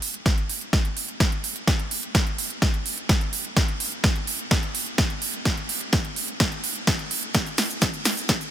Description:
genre	EDM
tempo	127 BPM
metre	4/4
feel	straight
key	none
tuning	none
part	big-room dance drum kit	drums	0.0-8.5 s	hi-hat, shaker, snare drum	-24 LUFS	right 1 dB	none
part	electronic kick drum	drums	0.3-8.4 s	none	-23 LUFS	equal	none
room	light reverb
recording	dense, heavily limited modern master, high-pass filter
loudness	-22 LUFS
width	side -11 dB against mid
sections	0.0-8.5 A section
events	build-up 0.0-8.5; drum fill 0.0-8.5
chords	none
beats	0.26 0.73 1.20 | 1.68 2.15 2.62 3.09 | 3.57 4.04 4.51 4.98 | 5.46 5.93 6.40 6.87 | 7.34 7.82 8.29

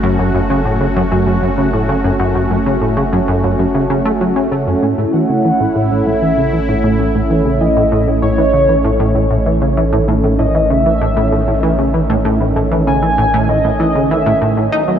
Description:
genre	ambient, sequencer-driven space music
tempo	97 BPM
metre	4/4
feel	straight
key	unclear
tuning	A4 = 439 Hz
part	sweeping resonant pad	sustained chords	0.0-15.0 s	D#3 to F#4	-17 LUFS	right 2 dB	chorus
part	plucky analog bass	riff	0.0-15.0 s	F#2 to D#4	-16 LUFS	equal	wide subtle chorus, tape echo
part	warm sub bass	bass	0.0-15.0 s	F#1 to B1	-21 LUFS	equal	none
part	pulse-width lead	melody	5.1-15.0 s	C#5 to G#5	-18 LUFS	equal	chorus, tape echo
room	moderate huge ambient reverb, RT60 8.6 s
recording	nothing above 10.3 kHz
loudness	-12 LUFS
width	side -9 dB against mid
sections	0.0-15.0 A section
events	none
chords	0.0 F#m; 4.8 A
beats	0.50 1.11 1.73 | 2.35 2.97 3.59 4.21 | 4.83 5.45 6.06 6.68 | 7.30 7.92 8.54 9.16 | 9.78 10.39 11.01 11.63 | 12.25 12.87 13.49 14.11 | 14.72

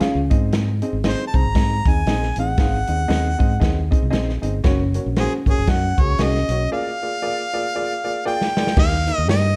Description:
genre	uptempo 1960s-style soul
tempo	116 BPM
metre	4/4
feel	swing 59% on 8ths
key	Ab mixolydian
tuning	A4 = 441 Hz
part	warm upright piano	accompaniment	0.0-9.5 s	Bb3 to F5	-27 LUFS	equal	none
part	fingered electric bass	bass	0.0-9.5 s	Gb1 to Ab2	-24 LUFS	equal	none
part	natural country drum kit	drums	0.0-9.4 s	crash cymbal, hi-hat, kick drum, snare drum	-22 LUFS	equal	none
part	warm harmonica	melody	1.1-9.6 s	Ab4 to Bb5	-26 LUFS	equal	none
room	light reverb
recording	dark, warm production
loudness	-20 LUFS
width	mono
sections	0.0-8.8 A section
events	break 6.7-8.8; drum fill 7.7-8.8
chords	0.3 Ab; 4.6 Gb; 6.7 Bb7; 8.8 Eb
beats	0.01 | 0.53 1.04 1.56 2.07 | 2.59 3.10 3.62 4.13 | 4.65 5.16 5.68 6.20 | 6.71 7.22 7.74 8.26 | 8.77 9.28

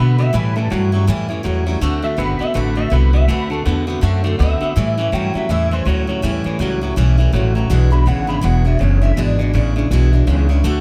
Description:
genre	rockabilly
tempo	163 BPM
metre	4/4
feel	swing 60% on 8ths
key	A mixolydian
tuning	A4 = 441 Hz
part	electric guitar through a small old amp	melody	0.0-9.9 s	A4 to B5	-27 LUFS	equal	ensemble chorus, analog delay
part	picked steel-string acoustic guitar	accompaniment	0.0-10.8 s	E2 to F#4	-26 LUFS	equal	none
part	twangy electric guitar	riff	0.0-10.8 s	E2 to B3	-24 LUFS	equal	phaser
part	upright bass	bass	0.0-10.8 s	E1 to B2	-18 LUFS	equal	none
room	little or no reverb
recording	none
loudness	-17 LUFS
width	mono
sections	0.0-10.8 A section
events	clean electric guitar solo 0.0-10.8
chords	0.3 A7; 1.8 D7; 4.8 A7; 7.7 E7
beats	| 0.34 0.71 1.08 1.45 | 1.82 2.19 2.56 2.92 | 3.29 3.66 4.03 4.40 | 4.77 5.13 5.50 5.87 | 6.24 6.61 6.97 7.34 | 7.71 8.07 8.44 8.81 | 9.18 9.54 9.91 10.27 | 10.64

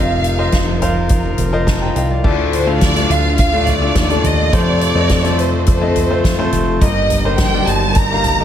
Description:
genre	piano-driven pop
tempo	105 BPM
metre	4/4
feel	straight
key	unclear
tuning	A4 = 435 Hz
part	warm symphonic violin section	melody	0.0-8.4 s	C5 to Bb5	-19 LUFS	right 1 dB	none
part	clear concert grand piano	accompaniment	0.0-8.4 s	G2 to C6	-19 LUFS	left 3 dB	none
part	warm symphonic string section	sustained chords	0.0-8.4 s	D3 to Bb4	-25 LUFS	equal	none
part	fat analog bass	bass	0.0-8.4 s	F1 to F2	-18 LUFS	equal	none
part	soft-mallet drum kit	drums	0.2-8.4 s	crash cymbal, hi-hat, kick drum, snare drum, toms	-18 LUFS	equal	none
room	light reverb, small room ambience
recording	none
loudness	-12 LUFS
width	side -10 dB against mid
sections	0.0-2.2 A section; 2.2-8.4 B section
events	grand piano fill 1.4-2.2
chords	0.0 F7sus4; 2.2 Dm; 4.5 F; 6.8 Eb/G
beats	0.53 1.10 1.67 | 2.24 2.81 3.38 3.96 | 4.53 5.10 5.67 6.24 | 6.81 7.38 7.96

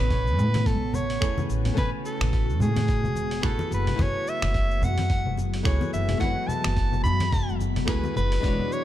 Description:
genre	sunset chillout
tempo	108 BPM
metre	4/4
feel	swing 57% on 16ths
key	unclear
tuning	A4 = 440 Hz
part	clear soprano saxophone	melody	0.0-8.8 s	G#4 to B5	-30 LUFS	equal	digital delay
part	flamenco guitar	accompaniment	0.0-8.8 s	G#3 to G#5	-34 LUFS	moving between left 5 dB and right 5 dB	auto-pan, low-pass filter, ping-pong delay
part	ethereal airy pad	sustained chords	0.0-8.8 s	C#3 to G#4	-33 LUFS	left 2 dB	ensemble chorus, built-in reverb, phaser
part	upright bass	bass	0.0-8.6 s	E1 to A2	-26 LUFS	equal	tube saturation
part	dusty soul sampler-style drum kit	drums	0.1-8.8 s	cabasa, congas, finger snaps, hi-hat	-32 LUFS	left 2 dB	overdrive
part	electronic kick drum	drums	0.1-8.6 s	none	-25 LUFS	equal	overdrive
part	congas	percussion	0.4-8.6 s	none	-34 LUFS	left 2 dB	none
room	small room ambience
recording	dark, warm production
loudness	-22 LUFS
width	side -12 dB against mid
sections	0.0-8.8 A section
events	none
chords	0.0 Amaj9; 3.7 F#m11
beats	0.10 0.66 1.21 | 1.77 2.33 2.88 3.44 | 3.99 4.55 5.10 5.66 | 6.21 6.77 7.33 7.88 | 8.44

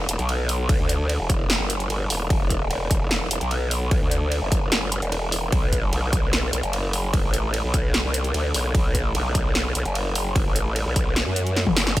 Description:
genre	heavy wobble dubstep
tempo	149 BPM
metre	4/4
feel	half-time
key	unclear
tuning	A4 = 440 Hz
part	growl bass	bass	0.0-12.0 s	E1 to F#2	-23 LUFS	equal	chorus, overdrive
part	big-room dance drum kit	drums	0.1-12.0 s	crash cymbal, hi-hat, ride cymbal, snare drum, toms	-26 LUFS	equal	none
part	electronic kick drum	drums	0.7-12.0 s	none	-23 LUFS	equal	none
room	digital ambience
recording	none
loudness	-20 LUFS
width	side -15 dB against mid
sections	0.0-12.0 A section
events	drum fill 11.6-12.0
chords	none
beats	0.29 | 0.69 1.09 1.50 1.90 | 2.30 2.71 3.11 3.51 | 3.91 4.32 4.72 5.12 | 5.52 5.93 6.33 6.73 | 7.13 7.54 7.94 8.34 | 8.75 9.15 9.55 9.95 | 10.36 10.76 11.16 11.56 | 11.97

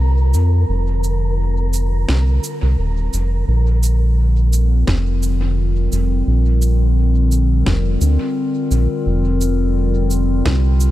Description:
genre	ambient dub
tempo	86 BPM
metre	4/4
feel	swing 54% on 16ths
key	unclear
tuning	A4 = 440 Hz
part	warbly tape-like pad	sustained chords	0.0-10.9 s	D3 to Bb4	-23 LUFS	left 2 dB	chorus, built-in reverb
part	round analog bass	bass	0.0-10.9 s	Eb1 to F2	-15 LUFS	equal	tube saturation
part	wind-like tuned noise texture	texture	0.0-3.5 s	Bb4	-29 LUFS	right 1 dB	built-in reverb
part	electronic cabasa and snare drum	drums	0.3-10.9 s	none	-28 LUFS	right 1 dB	dub echo
part	electronic kick drum	drums	4.9-10.6 s	none	-20 LUFS	equal	none
room	little or no reverb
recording	none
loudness	-14 LUFS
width	side -15 dB against mid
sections	0.0-3.5 A section; 3.5-10.9 B section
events	break 0.7-3.5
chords	0.0 Fsus4; 3.5 Bb69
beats	| 0.69 1.39 2.08 2.78 | 3.48 4.18 4.88 5.57 | 6.27 6.97 7.67 8.36 | 9.06 9.76 10.46

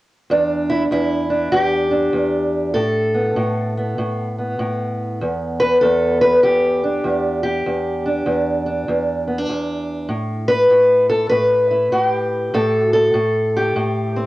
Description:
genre	acoustic country blues, solo or duo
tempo	98 BPM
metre	4/4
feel	swing 64% on 8ths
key	E minor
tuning	A4 = 440 Hz
part	fingerpicked steel-string acoustic guitar	solo	0.3-14.3 s	E2 to B4	-16 LUFS	equal	cassette tape
room	moderate studio reverb, RT60 0.5 s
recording	home recording on cassette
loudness	-16 LUFS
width	side -17 dB against mid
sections	0.3-14.3 A section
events	none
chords	0.3 Em7; 2.7 Asus2; 5.2 Em7; 10.1 A7sus2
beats	| 0.29 0.90 1.51 2.13 | 2.74 3.35 3.97 4.58 | 5.19 5.81 6.42 7.03 | 7.64 8.26 8.87 9.48 | 10.09 10.70 11.32 11.93 | 12.54 13.15 13.76

